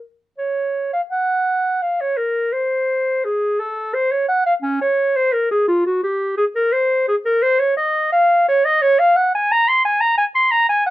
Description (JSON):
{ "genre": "classical, baroque-style fantasia for unaccompanied clarinet", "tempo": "86 BPM", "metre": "3/4", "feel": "rubato", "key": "Db major", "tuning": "A4 = 440 Hz", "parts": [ { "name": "warm clarinet", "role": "solo", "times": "0.0-10.9 s", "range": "Db4 to C6", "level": "-15 LUFS", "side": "equal", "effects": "none" } ], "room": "light reverb", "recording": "none", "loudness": "-15 LUFS", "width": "side -16 dB against mid", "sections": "0.4-10.9 A section", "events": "none", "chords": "none" }